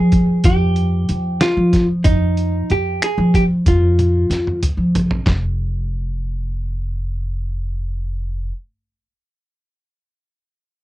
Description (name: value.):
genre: progressive instrumental, band music in an uneven meter.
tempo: 187 BPM (eighths).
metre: 5/8.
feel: straight.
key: F minor.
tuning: A4 = 440 Hz.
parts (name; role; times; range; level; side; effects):
vintage hollow-body jazz guitar; melody; 0.0-4.6 s; Eb4 to Ab4; -20 LUFS; equal; none.
upright bass; bass; 0.0-8.5 s; F1 to F3; -18 LUFS; equal; none.
trip hop sampler-style drum kit; drums; 0.1-5.4 s; finger snaps, handclaps, hi-hat, kick drum, snare drum, toms; -18 LUFS; equal; none.
room: little or no reverb.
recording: dry, close 1970s-style studio recording.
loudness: -16 LUFS.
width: side -16 dB against mid.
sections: 0.0-5.3 A section; 5.3-8.5 B section.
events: drum fill 4.0-5.3.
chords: 0.0 Fm; 3.7 N.C..